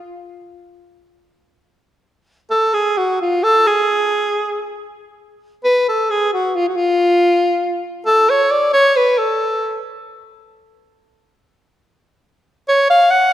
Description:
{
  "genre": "balkan folk",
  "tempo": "free time",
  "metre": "none",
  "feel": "none",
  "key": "unclear",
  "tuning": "A4 = 440 Hz",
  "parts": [
    { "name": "clear alto saxophone", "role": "solo", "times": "0.0-0.1, 2.5-9.9, 12.7-13.3 s", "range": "E#4 to F#5", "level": "-14 LUFS", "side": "equal", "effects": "none" }
  ],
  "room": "moderate concert hall reverb, RT60 2.0 s",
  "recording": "none",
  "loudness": "-13 LUFS",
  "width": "side -12 dB against mid",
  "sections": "0.0-13.3 A section",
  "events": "alto saxophone solo 0.0-13.3",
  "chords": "none",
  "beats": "free time"
}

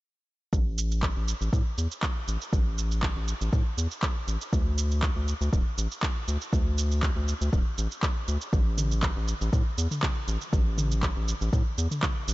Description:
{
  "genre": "afro house",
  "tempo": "120 BPM",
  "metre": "4/4",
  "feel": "swing 54% on 16ths",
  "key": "unclear",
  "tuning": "A4 = 440 Hz",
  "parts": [
    { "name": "round analog bass", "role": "bass", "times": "0.5-12.3 s", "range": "D1 to A2", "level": "-27 LUFS", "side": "equal", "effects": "sidechain pumping" },
    { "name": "afro-pop drum kit", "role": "drums", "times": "0.5-12.3 s", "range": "handclaps, shaker, toms", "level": "-33 LUFS", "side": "right 1 dB", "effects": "none" },
    { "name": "electronic kick drum", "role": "drums", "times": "0.5-12.1 s", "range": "none", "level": "-26 LUFS", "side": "equal", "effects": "overdrive" }
  ],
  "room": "digital ambience",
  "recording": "nothing above 7.8 kHz",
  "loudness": "-25 LUFS",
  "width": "side -19 dB against mid",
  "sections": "0.5-12.3 A section",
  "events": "none",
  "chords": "none",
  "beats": "| 0.53 1.03 1.53 2.03 | 2.53 3.03 3.53 4.03 | 4.53 5.03 5.53 6.03 | 6.53 7.03 7.53 8.03 | 8.53 9.03 9.53 10.03 | 10.53 11.03 11.53 12.03"
}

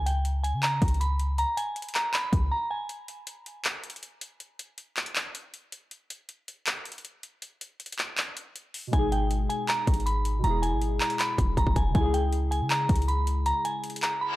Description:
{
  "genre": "hip hop, trap",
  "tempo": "159 BPM",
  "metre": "4/4",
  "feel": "half-time",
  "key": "unclear",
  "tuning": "A4 = 440 Hz",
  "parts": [
    { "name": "soft synth bell", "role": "melody", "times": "0.0-2.9, 8.9-14.4 s", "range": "G5 to B5", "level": "-29 LUFS", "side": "right 1 dB", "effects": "chorus" },
    { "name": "clean 808-style bass", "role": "bass", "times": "0.0-2.5, 8.9-13.5 s", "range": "E1 to C#3", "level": "-26 LUFS", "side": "equal", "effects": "none" },
    { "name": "trap drum kit", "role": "drums", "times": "0.1-14.1 s", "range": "handclaps, hi-hat, kick drum", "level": "-29 LUFS", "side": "equal", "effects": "none" },
    { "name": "warbly lo-fi synth keys", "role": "accompaniment", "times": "8.9-14.4 s", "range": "B2 to G#4", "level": "-33 LUFS", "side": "left 1 dB", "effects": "chorus" },
    { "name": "reverse cymbal", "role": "sound effects", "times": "14.3-14.4 s", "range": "none", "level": "-32 LUFS", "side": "left 3 dB", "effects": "none" }
  ],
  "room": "little or no reverb",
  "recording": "dry, gritty hardware recording",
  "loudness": "-25 LUFS",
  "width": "side -17 dB against mid",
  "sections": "0.0-14.4 A section",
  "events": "break 2.5-2.9, 2.9-8.9",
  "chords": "0.0 A#m/C#; 2.9 N.C.; 8.9 G#m; 10.4 E; 11.9 C#m",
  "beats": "0.25 0.63 1.01 | 1.38 1.76 2.14 2.52 | 2.89 3.27 3.65 4.03 | 4.40 4.78 5.16 5.53 | 5.91 6.29 6.67 7.04 | 7.42 7.80 8.18 8.55 | 8.93 9.31 9.69 10.06 | 10.44 10.82 11.19 11.57 | 11.95 12.33 12.70 13.08 | 13.46 13.84 14.21"
}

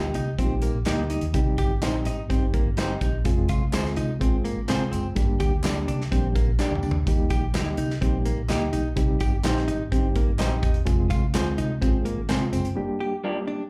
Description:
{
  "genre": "uptempo 1960s-style soul",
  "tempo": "126 BPM",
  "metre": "4/4",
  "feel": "straight",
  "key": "Eb major",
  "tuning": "A4 = 441 Hz",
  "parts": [
    { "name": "mellow reed electric piano", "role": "accompaniment", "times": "0.0-13.6 s", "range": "G3 to Ab4", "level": "-32 LUFS", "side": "equal", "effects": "fast tremolo" },
    { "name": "electric guitar through a small old amp", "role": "stabs", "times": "0.0-13.4 s", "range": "Bb3 to C5", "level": "-34 LUFS", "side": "equal", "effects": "slapback echo" },
    { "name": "vintage muted fingered electric bass", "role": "bass", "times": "0.0-12.7 s", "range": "Fb1 to Eb2", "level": "-29 LUFS", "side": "equal", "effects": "none" },
    { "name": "natural country drum kit", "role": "drums", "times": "0.1-12.8 s", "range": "hi-hat, kick drum, snare drum, toms", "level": "-28 LUFS", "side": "equal", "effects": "none" },
    { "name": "hollow-body jazz guitar", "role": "riff", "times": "0.2-13.6 s", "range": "Bb3 to G4", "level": "-34 LUFS", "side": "equal", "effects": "slapback echo" },
    { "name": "tambourine and handclaps", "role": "percussion", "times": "0.2-12.6 s", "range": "none", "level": "-44 LUFS", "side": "equal", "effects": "none" }
  ],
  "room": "light reverb",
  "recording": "live gig heard through the venue's PA, club reverb",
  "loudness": "-24 LUFS",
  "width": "mono",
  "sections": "0.0-13.7 A section",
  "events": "drum fill 6.6-7.1; break 12.8-13.7",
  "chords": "0.0 Eb; 1.3 Cm; 3.3 Fm; 5.2 Gm; 7.1 Eb; 9.0 Cm; 10.9 Fm; 12.8 Gm",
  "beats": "0.39 0.86 | 1.34 1.82 2.30 2.77 | 3.25 3.73 4.21 4.68 | 5.16 5.64 6.12 6.59 | 7.07 7.54 8.02 8.49 | 8.97 9.45 9.92 10.39 | 10.87 11.34 11.82 12.29 | 12.77 13.24"
}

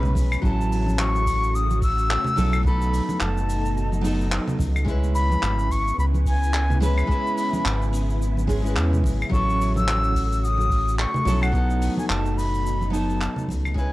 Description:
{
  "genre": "sunset chillout",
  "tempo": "108 BPM",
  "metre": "4/4",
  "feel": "swing 57% on 16ths",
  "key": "unclear",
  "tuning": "A4 = 439 Hz",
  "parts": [
    { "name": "concert flute", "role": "melody", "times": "0.0-13.9 s", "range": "F#5 to E6", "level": "-26 LUFS", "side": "left 1 dB", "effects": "tape echo" },
    { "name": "nylon-string guitar", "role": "accompaniment", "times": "0.0-13.9 s", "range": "F#3 to B4", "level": "-28 LUFS", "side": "right 1 dB", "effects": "auto-pan" },
    { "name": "soft string machine", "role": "sustained chords", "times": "0.0-13.9 s", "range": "B2 to F#4", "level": "-33 LUFS", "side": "left 1 dB", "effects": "ensemble chorus" },
    { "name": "round analog bass", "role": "bass", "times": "0.0-13.9 s", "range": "F#1 to E2", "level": "-23 LUFS", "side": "equal", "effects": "none" },
    { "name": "jazz brush drum kit", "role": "drums", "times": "0.0-13.9 s", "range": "cabasa, claves, handclaps, hi-hat", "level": "-31 LUFS", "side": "equal", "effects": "none" },
    { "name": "congas", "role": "percussion", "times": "0.0-13.6 s", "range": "none", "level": "-31 LUFS", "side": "right 1 dB", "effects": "none" },
    { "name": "electronic kick drum", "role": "drums", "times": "0.2-13.9 s", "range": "none", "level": "-25 LUFS", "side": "equal", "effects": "overdrive" }
  ],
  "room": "studio reverb",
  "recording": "dry, gritty hardware recording, cassette tape",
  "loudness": "-20 LUFS",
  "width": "side -17 dB against mid",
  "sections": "0.4-13.9 A section",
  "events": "fade-out 12.3-13.9",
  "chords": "0.4 A6; 2.7 B7; 4.9 C#m7; 9.3 A6; 11.5 B7",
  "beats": "| 0.43 0.98 1.54 2.10 | 2.65 3.21 3.76 4.32 | 4.87 5.43 5.98 6.54 | 7.09 7.65 8.21 8.76 | 9.32 9.87 10.43 10.98 | 11.54 12.10 12.65 13.21 | 13.76"
}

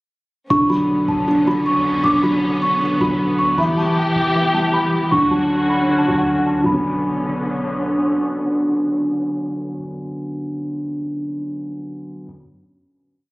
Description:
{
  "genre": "hip hop, trap",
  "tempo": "156 BPM",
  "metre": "4/4",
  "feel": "half-time",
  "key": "B minor",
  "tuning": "A4 = 440 Hz",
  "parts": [
    { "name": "celesta", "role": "melody", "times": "0.5-7.8 s", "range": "F#5 to D6", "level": "-21 LUFS", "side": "equal", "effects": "digital delay" },
    { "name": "felt-muted upright piano", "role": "accompaniment", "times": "0.5-12.2 s", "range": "D3 to C#4", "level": "-19 LUFS", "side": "equal", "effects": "none" },
    { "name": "dark symphonic string section", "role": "sustained chords", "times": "0.5-9.7 s", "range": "D3 to G4", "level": "-22 LUFS", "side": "equal", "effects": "none" },
    { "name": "clean 808-style bass", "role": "bass", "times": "0.5-8.2 s", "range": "E1 to F#2", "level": "-33 LUFS", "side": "equal", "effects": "none" }
  ],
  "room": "light reverb, small room ambience",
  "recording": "recorded on a phone in the room, studio reverb, compression, low-pass filter",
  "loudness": "-16 LUFS",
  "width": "side -21 dB against mid",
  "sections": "0.5-6.7 breakdown; 6.7-9.7 final chord",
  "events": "none",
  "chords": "0.5 Bmadd9; 3.6 Em; 5.1 Dmaj7; 6.7 Bmadd9",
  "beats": "| 0.51 0.89 1.27 1.66 | 2.04 2.43 2.81 3.20 | 3.58 3.97 4.35 4.74 | 5.12 5.50 5.89 6.27 | 6.66 7.04 7.43 7.81 | 8.20 8.58 8.97 9.35"
}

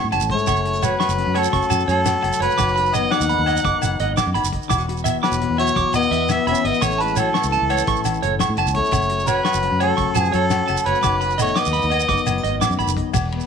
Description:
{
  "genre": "highlife guitar band",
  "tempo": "114 BPM (dotted quarters)",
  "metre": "12/8",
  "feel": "straight",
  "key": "unclear",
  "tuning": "A4 = 435 Hz",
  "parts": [
    { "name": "nylon-string guitar", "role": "accompaniment", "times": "0.0-13.5 s", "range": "E2 to F#4", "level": "-28 LUFS", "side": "left 10 dB", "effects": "none" },
    { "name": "electric guitar at the edge of break-up", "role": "arpeggios", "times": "0.0-12.9 s", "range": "C#5 to D6", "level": "-24 LUFS", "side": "right 12 dB", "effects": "tape echo" },
    { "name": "fingered electric bass", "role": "bass", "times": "0.0-13.4 s", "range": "E1 to A2", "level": "-24 LUFS", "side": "right 1 dB", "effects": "none" },
    { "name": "warm soul drum kit", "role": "drums", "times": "0.1-13.4 s", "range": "hi-hat, kick drum, ride cymbal, snare drum", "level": "-29 LUFS", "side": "left 4 dB", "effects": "none" },
    { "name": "agogo bells", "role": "percussion", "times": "0.1-13.3 s", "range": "none", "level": "-28 LUFS", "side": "left 11 dB", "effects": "none" },
    { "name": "shekere", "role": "percussion", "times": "0.2-13.4 s", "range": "none", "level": "-27 LUFS", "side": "right 9 dB", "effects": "none" },
    { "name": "mellow harmonica", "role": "melody", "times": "0.3-12.6 s", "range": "A4 to F#5", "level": "-22 LUFS", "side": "equal", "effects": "none" },
    { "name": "mellow trombone", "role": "second line", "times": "0.3-12.6 s", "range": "E3 to D#4", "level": "-27 LUFS", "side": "left 11 dB", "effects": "none" }
  ],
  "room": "light reverb, studio ambience",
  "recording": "1960s-style stereo with parts hard left and right",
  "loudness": "-17 LUFS",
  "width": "side -6 dB against mid",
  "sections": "0.0-13.1 A section",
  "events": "none",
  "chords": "0.5 F#m; 2.6 B/F#; 4.7 Esus2; 6.8 A; 8.9 F#m; 11.0 B/F#",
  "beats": "| 0.47 1.00 1.53 2.06 | 2.59 3.12 3.64 4.17 | 4.70 5.23 5.76 6.29 | 6.82 7.34 7.87 8.40 | 8.93 9.46 9.98 10.51 | 11.04 11.56 12.09 12.61 | 13.14"
}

